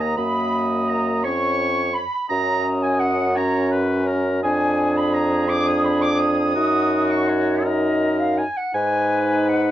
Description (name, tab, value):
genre	classical, slow romantic movement for wind quintet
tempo	56 BPM (dotted quarters)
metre	6/8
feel	rubato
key	unclear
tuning	A4 = 441 Hz
part	mellow hollow silver concert flute	melody	0.0-9.7 s	Db5 to Eb6	-28 LUFS	left 6 dB	none
part	warm oboe	second line	0.0-9.7 s	Gb4 to Eb5	-28 LUFS	left 1 dB	none
part	clear French horn	accompaniment	0.0-9.7 s	Bb3 to Eb4	-24 LUFS	left 1 dB	none
part	mellow clarinet	accompaniment	0.0-9.7 s	Db5 to Eb6	-24 LUFS	right 3 dB	none
part	warm bassoon	bass	0.0-9.7 s	Eb2 to Ab2	-22 LUFS	right 1 dB	none
room	light reverb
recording	worn, warbling old tape, cassette tape, warbly pitch drift, nothing above 7.5 kHz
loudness	-18 LUFS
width	side -12 dB against mid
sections	0.0-9.7 A section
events	none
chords	0.2 Gb; 1.2 Db/F; 2.3 Gb5; 4.4 Fdim7; 6.6 Ebm/Gb; 8.7 Abm7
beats	| 0.17 1.24 | 2.31 3.37 | 4.44 5.50 | 6.56 7.65 | 8.75